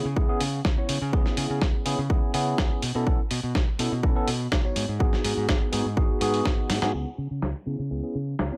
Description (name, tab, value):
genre	filtered disco house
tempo	124 BPM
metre	4/4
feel	straight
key	C# minor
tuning	A4 = 441 Hz
part	tine electric piano	accompaniment	0.0-8.6 s	B3 to C#5	-31 LUFS	equal	phaser, sidechain pumping, low-pass filter
part	growling fingered electric bass	bass	0.0-8.5 s	G#1 to C#3	-32 LUFS	equal	overdrive, sidechain pumping, low-pass filter
part	electronic kick drum	drums	0.2-6.6 s	none	-27 LUFS	equal	overdrive
part	dusty soul sampler-style drum kit	drums	0.4-8.5 s	hi-hat, snare drum	-32 LUFS	equal	overdrive, sidechain pumping on hats, low-pass filter on hats, low-pass filter on snare, low-pass filter on room
room	little or no reverb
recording	none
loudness	-26 LUFS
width	mono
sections	0.0-6.9 A section; 6.9-8.6 B section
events	drum fill 6.7; filter sweep 6.9-8.6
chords	0.0 C#m7; 2.8 B9sus4; 4.8 G#m7; 6.9 C#m7